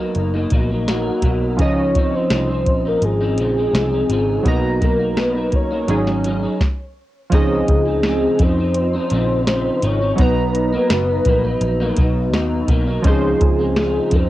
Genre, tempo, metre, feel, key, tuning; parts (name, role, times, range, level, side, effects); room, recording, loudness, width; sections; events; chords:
indie pop, bedroom pop; 84 BPM; 4/4; straight; Db major; A4 = 440 Hz
chorused retro synth keys; accompaniment; 0.0-14.3 s; F3 to Bb5; -23 LUFS; right 2 dB; cassette tape
electric guitar through a small old amp; accompaniment; 0.0-14.3 s; Ab2 to Eb4; -23 LUFS; left 2 dB; ensemble chorus, warbly pitch drift, cassette tape
vintage muted picked electric bass; bass; 0.0-14.3 s; Gb1 to F2; -22 LUFS; equal
soft vintage rhythm box; drums; 0.1-14.3 s; hi-hat, kick drum, snare drum; -18 LUFS; equal; cassette tape
soft octave-layered synth lead; melody; 0.9-14.3 s; Gb4 to Db5; -21 LUFS; equal; ensemble chorus, cassette tape, analog delay
light reverb; home recording on cassette; -15 LUFS; side -15 dB against mid
0.0-7.3 A section; 7.3-14.3 B section
stop 6.6-7.3
0.0 Cbmaj7; 1.6 Dbmaj9; 4.5 Cbmaj7; 5.9 Ab7sus4; 7.3 Dbmaj9; 10.2 Cbmaj7; 13.0 Dbmaj9